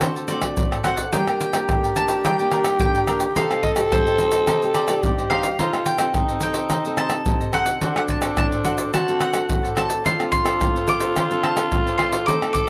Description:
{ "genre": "samba and choro", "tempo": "108 BPM", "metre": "4/4", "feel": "straight", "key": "G minor", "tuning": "A4 = 439 Hz", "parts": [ { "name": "cavaquinho", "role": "accompaniment", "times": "0.0-12.7 s", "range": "D4 to G5", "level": "-32 LUFS", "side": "equal", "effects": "slapback echo" }, { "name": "nylon-string guitar", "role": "accompaniment", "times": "0.0-12.7 s", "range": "G2 to Bb4", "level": "-31 LUFS", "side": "equal", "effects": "slapback echo" }, { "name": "egg shaker, surdo, pandeiro and tamborim", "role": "percussion", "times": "0.0-12.7 s", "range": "none", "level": "-26 LUFS", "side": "equal", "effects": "none" }, { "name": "mandolin", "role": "melody", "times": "0.3-12.7 s", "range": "C5 to D6", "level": "-27 LUFS", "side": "equal", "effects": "none" }, { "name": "growling tenor saxophone", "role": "second line", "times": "1.1-12.7 s", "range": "D4 to A4", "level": "-25 LUFS", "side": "equal", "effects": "none" } ], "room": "light reverb", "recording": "recorded outdoors, with no room sound", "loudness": "-21 LUFS", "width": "mono", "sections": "0.0-1.1 A section; 1.1-12.7 B section", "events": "mandolin solo 0.0-1.1", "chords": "0.0 D7; 1.1 Gm; 3.4 Cm; 5.6 Adim/C; 7.8 D7; 10.0 Dm7" }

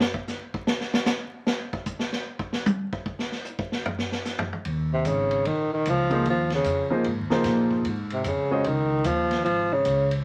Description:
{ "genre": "modal jazz", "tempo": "150 BPM", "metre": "4/4", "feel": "swing 64% on 8ths", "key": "unclear", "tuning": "A4 = 440 Hz", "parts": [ { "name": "vintage drum kit", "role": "drums", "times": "0.0-10.2 s", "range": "hi-hat, kick drum, ride cymbal, snare drum, toms", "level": "-31 LUFS", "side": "equal", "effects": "none" }, { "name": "upright bass", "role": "bass", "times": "4.7-10.2 s", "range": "Ab1 to Bb2", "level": "-30 LUFS", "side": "equal", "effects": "none" }, { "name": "warm tenor saxophone", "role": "melody", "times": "4.9-10.1 s", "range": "C3 to F3", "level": "-26 LUFS", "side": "equal", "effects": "none" }, { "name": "warm grand piano", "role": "accompaniment", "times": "6.1-8.6 s", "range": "F3 to Eb5", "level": "-27 LUFS", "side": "equal", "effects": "none" } ], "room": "wet club reverb, RT60 0.7 s", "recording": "vinyl crackle", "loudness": "-26 LUFS", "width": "mono", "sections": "0.0-4.7 A section; 4.7-10.2 B section", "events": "drum solo 0.0-4.7", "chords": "0.0 N.C.; 4.7 Eb9sus4" }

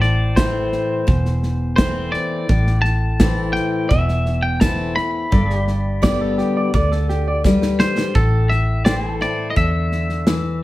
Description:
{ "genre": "honky-tonk and classic country", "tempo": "85 BPM", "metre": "4/4", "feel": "straight", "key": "A minor", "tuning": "A4 = 438 Hz", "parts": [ { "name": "twangy electric guitar", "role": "melody", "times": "0.0-10.6 s", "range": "A4 to B5", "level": "-23 LUFS", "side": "equal", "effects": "none" }, { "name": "picked steel-string acoustic guitar", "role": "accompaniment", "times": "0.0-10.6 s", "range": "E2 to G4", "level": "-22 LUFS", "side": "left 2 dB", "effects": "none" }, { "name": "pedal steel guitar", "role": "sustained chords", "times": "0.0-10.6 s", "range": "G4 to D5", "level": "-33 LUFS", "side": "equal", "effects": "none" }, { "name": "vintage muted fingered electric bass", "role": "bass", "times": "0.0-10.6 s", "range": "E1 to E2", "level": "-20 LUFS", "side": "equal", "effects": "none" }, { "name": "natural country drum kit", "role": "drums", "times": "0.0-10.4 s", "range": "hi-hat, kick drum, snare drum", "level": "-19 LUFS", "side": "equal", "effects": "none" }, { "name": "pedal steel guitar", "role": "second line", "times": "6.0-8.0 s", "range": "G4 to D5", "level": "-25 LUFS", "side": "right 2 dB", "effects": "none" } ], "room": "wet studio reverb, RT60 0.8 s", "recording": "heard from further back in the room", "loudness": "-16 LUFS", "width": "side -17 dB against mid", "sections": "0.0-8.2 A section; 8.2-10.6 B section", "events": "drum fill 7.4-8.2", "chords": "0.0 Am; 5.3 G; 8.2 Am" }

